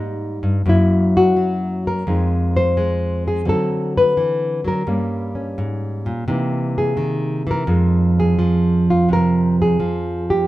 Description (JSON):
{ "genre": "solo jazz", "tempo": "85 BPM", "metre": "4/4", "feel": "swing 68% on 8ths", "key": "F minor", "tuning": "A4 = 441 Hz", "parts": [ { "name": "nylon-string guitar", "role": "solo", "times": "0.0-10.5 s", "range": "F2 to C5", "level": "-16 LUFS", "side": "equal", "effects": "none" } ], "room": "moderate club reverb, RT60 0.6 s", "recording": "dark, warm production", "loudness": "-16 LUFS", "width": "side -16 dB against mid", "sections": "0.0-10.5 A section", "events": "none", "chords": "0.0 Gm; 0.6 Gb7; 2.0 Fm7; 3.5 D7b9; 4.9 Gdim; 6.3 C7alt; 7.7 Fm7" }